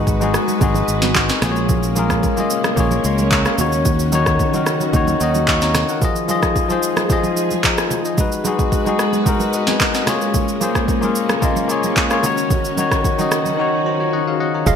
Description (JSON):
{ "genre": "amapiano", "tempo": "111 BPM", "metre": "4/4", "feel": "straight", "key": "unclear", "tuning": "A4 = 439 Hz", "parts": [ { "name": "bell-like tine electric piano", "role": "accompaniment", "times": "0.0-14.8 s", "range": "Eb3 to Db6", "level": "-19 LUFS", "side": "left 4 dB", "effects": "none" }, { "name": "string machine, full ensemble", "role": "sustained chords", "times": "0.0-14.8 s", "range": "Eb3 to Cb5", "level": "-23 LUFS", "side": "right 1 dB", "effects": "ensemble chorus, sidechain pumping" }, { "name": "fingered electric bass", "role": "bass", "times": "0.0-5.8 s", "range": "Ab1 to Eb2", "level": "-20 LUFS", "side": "right 1 dB", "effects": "none" }, { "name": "smooth R&B drum kit", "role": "drums", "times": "0.1-14.8 s", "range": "handclaps, kick drum, rim click, shaker, snare drum", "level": "-19 LUFS", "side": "right 1 dB", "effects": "overdrive, gated reverb" }, { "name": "congas", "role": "percussion", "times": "0.2-14.8 s", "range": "none", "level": "-28 LUFS", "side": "right 6 dB", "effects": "none" }, { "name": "hollow square pluck", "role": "stabs", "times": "14.7-14.8 s", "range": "Ab4 to F5", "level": "-17 LUFS", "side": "right 7 dB", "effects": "chorus" }, { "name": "deep log drum bass", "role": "bass", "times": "14.7-14.8 s", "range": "F1", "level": "-17 LUFS", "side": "right 1 dB", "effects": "none" }, { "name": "impact", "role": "sound effects", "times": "14.7-14.8 s", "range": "none", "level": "barely audible", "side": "none", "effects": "none" } ], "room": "moderate lush hall reverb, RT60 1.7 s, digital ambience", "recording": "bright 1980s-style digital production", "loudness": "-15 LUFS", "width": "side -7 dB against mid", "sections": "0.0-14.7 A section", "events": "drums muted 13.6-14.7; tine electric piano fill 13.6-14.7", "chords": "0.0 Abm7; 1.4 Bbm7; 3.6 Ebm7; 6.0 Fm7; 8.2 Abm7; 10.1 Bbm7; 12.2 Ebm7" }